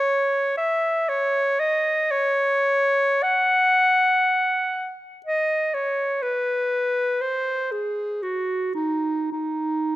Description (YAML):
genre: classical, free, expressive piece for unaccompanied clarinet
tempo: 52-62 BPM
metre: 4/4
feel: rubato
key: C# minor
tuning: A4 = 440 Hz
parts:
  - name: clear clarinet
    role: solo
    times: 0.0-10.0 s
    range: D#4 to F#5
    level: -20 LUFS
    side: equal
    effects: none
room: light reverb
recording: close, detailed microphones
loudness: -20 LUFS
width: side -15 dB against mid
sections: 0.0-10.0 A section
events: none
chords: none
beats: 0.08 | 1.06 2.10 3.22 4.25 | 5.25 6.23 7.23 8.24 | 9.35